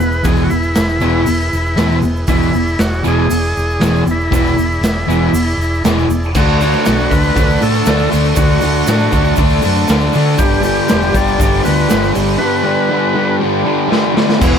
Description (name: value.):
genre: garage rock duo or trio.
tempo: 118 BPM.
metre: 4/4.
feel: straight.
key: unclear.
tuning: A4 = 440 Hz.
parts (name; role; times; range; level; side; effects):
overdriven combo organ; melody; 0.0-13.4 s; E4 to D5; -19 LUFS; equal; none.
combo organ; sustained chords; 0.0-14.6 s; D4 to D5; -26 LUFS; right 1 dB; none.
hollow-body short-scale fingered electric bass; bass; 0.0-14.6 s; E1 to D3; -17 LUFS; equal; none.
egg shaker; percussion; 0.0-14.6 s; none; -33 LUFS; right 8 dB; none.
fuzz guitar; riff; 0.2-14.6 s; E2 to D4; -14 LUFS; equal; distortion.
raw garage drum kit; drums; 0.2-14.5 s; crash cymbal, hi-hat, kick drum, snare drum; -18 LUFS; equal; none.
room: light reverb.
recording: none.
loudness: -11 LUFS.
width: side -7 dB against mid.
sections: 0.0-6.4 A section; 6.4-14.4 B section.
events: drum fill 13.9-14.4.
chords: 0.0 E; 6.4 D; 10.4 G.